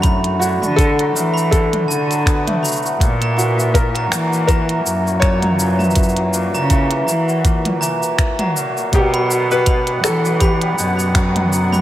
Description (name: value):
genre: folktronica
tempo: 81 BPM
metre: 4/4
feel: swing 56% on 16ths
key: unclear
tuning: A4 = 440 Hz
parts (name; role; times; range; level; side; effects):
- glockenspiel with hard plastic mallets; second line; 0.0-11.8 s; A5 to B5; -25 LUFS; right 5 dB; tape echo
- musette accordion; sustained chords; 0.0-11.8 s; D3 to F#5; -29 LUFS; equal; none
- hammered dulcimer; arpeggios; 0.0-11.8 s; A2 to B3; -22 LUFS; left 2 dB; tape echo
- muted cello; bass; 0.0-11.8 s; F#2 to E3; -19 LUFS; equal; tube saturation
- electronic kick drum; drums; 0.0-11.3 s; none; -16 LUFS; equal; none
- minimal click drum kit; drums; 0.0-11.8 s; cabasa, finger snaps, hi-hat, toms; -22 LUFS; right 1 dB; none
- felt-muted upright piano; melody; 0.4-11.1 s; F#4 to C#5; -21 LUFS; left 1 dB; tape echo
room: light reverb, small room ambience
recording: none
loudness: -14 LUFS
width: side -13 dB against mid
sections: 0.0-11.8 A section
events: none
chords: 0.0 Bm7; 3.0 F#7; 8.9 Gmaj7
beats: | 0.04 0.78 1.52 2.26 | 3.00 3.75 4.49 5.23 | 5.97 6.71 7.45 8.19 | 8.93 9.67 10.41 11.15